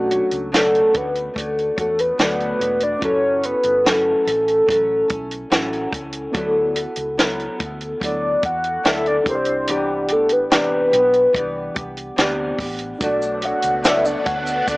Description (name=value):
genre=indie pop, bedroom pop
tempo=72 BPM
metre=4/4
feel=straight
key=unclear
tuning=A4 = 441 Hz
part: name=soft octave-layered synth lead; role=melody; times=0.0-14.8 s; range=F#4 to F#5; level=-18 LUFS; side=equal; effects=phaser, analog chorus, slapback echo
part: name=mellow reed electric piano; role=accompaniment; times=0.0-14.8 s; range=B3 to D5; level=-29 LUFS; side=right 1 dB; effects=fast tremolo, cassette tape
part: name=nylon-string guitar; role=accompaniment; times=0.0-14.8 s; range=B2 to C#5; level=-24 LUFS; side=left 1 dB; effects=lush chorus, warbly pitch drift
part: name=vintage muted fingered electric bass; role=bass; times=0.0-14.8 s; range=E1 to E2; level=-36 LUFS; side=equal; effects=none
part: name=compact cocktail drum kit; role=drums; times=0.1-14.8 s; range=hi-hat, kick drum, snare drum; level=-21 LUFS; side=equal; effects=none
part: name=phased string machine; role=sustained chords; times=13.0-14.8 s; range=B2 to D4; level=-28 LUFS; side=right 1 dB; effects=ensemble chorus, phaser
part: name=tube shaker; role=percussion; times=13.0-14.8 s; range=none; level=-35 LUFS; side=right 1 dB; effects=none
room=moderate spring reverb, RT60 2.6 s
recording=small speaker sound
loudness=-17 LUFS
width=side -22 dB against mid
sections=0.0-14.8 A section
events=soft synth lead solo 0.0-14.8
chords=0.0 Bm9; 3.0 F#m7; 6.4 D69; 9.3 Cmaj9; 13.0 Bm9